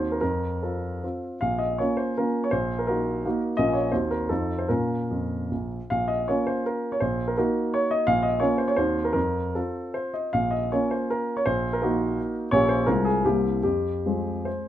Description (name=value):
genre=classical, romantic triple-time dance for piano with dotted rhythms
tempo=135-187 BPM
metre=3/4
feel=rubato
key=Bb minor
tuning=A4 = 445 Hz
part: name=warm grand piano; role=solo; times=0.0-14.7 s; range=Bb1 to F5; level=-23 LUFS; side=equal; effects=none
room=light reverb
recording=minimal, uncompressed stereo recording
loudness=-23 LUFS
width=side -11 dB against mid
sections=0.0-5.9 A section; 5.9-14.7 A section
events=none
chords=0.2 F; 1.4 Bbm; 2.5 Ebm/Bb; 3.6 Bbm; 3.9 Cdim/Eb; 4.3 F7; 4.7 Bbm; 7.0 Ebm/Bb; 8.1 Bbm; 8.8 Cdim/Eb; 9.2 F; 10.3 Bbm; 11.5 Ebm/Bb; 12.5 Gdim/Bb; 12.9 Fm/C; 13.2 C7; 13.6 Fm